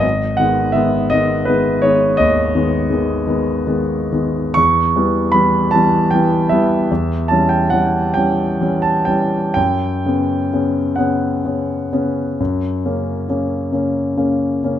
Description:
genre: classical, romantic nocturne for solo piano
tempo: 40-57 BPM (dotted quarters)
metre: 12/8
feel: rubato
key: unclear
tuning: A4 = 441 Hz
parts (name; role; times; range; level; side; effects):
- warm concert grand piano; solo; 0.0-14.8 s; G#1 to C#6; -14 LUFS; equal; none
room: moderate recital hall reverb, RT60 1.8 s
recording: close, detailed microphones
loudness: -14 LUFS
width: side -10 dB against mid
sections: 0.0-14.8 A section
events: none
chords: 0.0 G#m; 4.6 Em; 6.9 C#dim/E; 9.6 F#sus4; 12.4 F#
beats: | 0.03 1.13 2.21 3.28 | 4.57 5.73 6.89 8.14 | 9.55 10.98 12.39 13.72

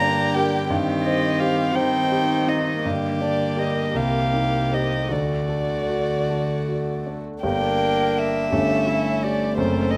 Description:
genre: classical, slow romantic movement for piano quintet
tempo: 50-58 BPM (dotted quarters)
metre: 6/8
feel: rubato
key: G minor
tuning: A4 = 440 Hz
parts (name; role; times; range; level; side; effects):
- dark violin; melody; 0.0-10.0 s; C5 to Bb5; -27 LUFS; equal; none
- rich violin; second line; 0.0-10.0 s; C4 to G4; -32 LUFS; equal; none
- warm cello; second line; 0.0-10.0 s; C3 to Bb3; -30 LUFS; equal; none
- clear grand piano; accompaniment; 0.0-10.0 s; F#1 to C5; -27 LUFS; equal; none
- dark viola; accompaniment; 0.0-10.0 s; A3 to Bb4; -31 LUFS; equal; none
room: moderate scoring stage reverb, RT60 1.8 s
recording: close, detailed microphones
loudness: -22 LUFS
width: mono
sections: 0.0-7.4 A section; 7.4-10.0 B section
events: none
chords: 0.0 Gm; 0.7 Cm/G; 2.8 Gm; 3.9 Cm; 5.1 D; 7.4 Gm; 8.5 A7/G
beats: | 0.70 1.76 | 2.85 3.95 | 5.10 6.29 | 7.43 8.53 | 9.57

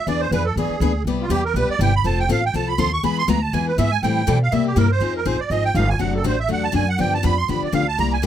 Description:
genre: acoustic string swing (jazz manouche)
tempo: 243 BPM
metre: 4/4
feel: swing 57% on 8ths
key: unclear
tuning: A4 = 440 Hz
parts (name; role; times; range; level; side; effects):
- musette accordion; melody; 0.0-8.2 s; F4 to C#6; -22 LUFS; right 6 dB; none
- picked steel-string acoustic guitar; accompaniment; 0.1-8.3 s; C3 to A4; -22 LUFS; left 6 dB; none
- upright bass; bass; 0.1-8.3 s; F1 to C3; -21 LUFS; right 1 dB; none
room: little or no reverb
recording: close, detailed microphones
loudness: -17 LUFS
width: side -10 dB against mid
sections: 0.0-5.0 A section; 5.0-8.3 A section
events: accordion solo 0.0-8.3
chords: 0.1 E7; 1.1 Cmaj7; 2.0 F; 3.0 E; 4.0 Am7; 4.5 C7; 5.0 Fm7; 6.0 D7/F#; 7.0 G7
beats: | 0.07 0.32 0.56 0.81 | 1.06 1.30 1.55 1.80 | 2.05 2.29 2.54 2.79 | 3.03 3.28 3.53 3.78 | 4.02 4.27 4.52 4.76 | 5.01 5.26 5.51 5.75 | 6.00 6.25 6.50 6.75 | 6.99 7.24 7.49 7.74 | 7.98 8.23

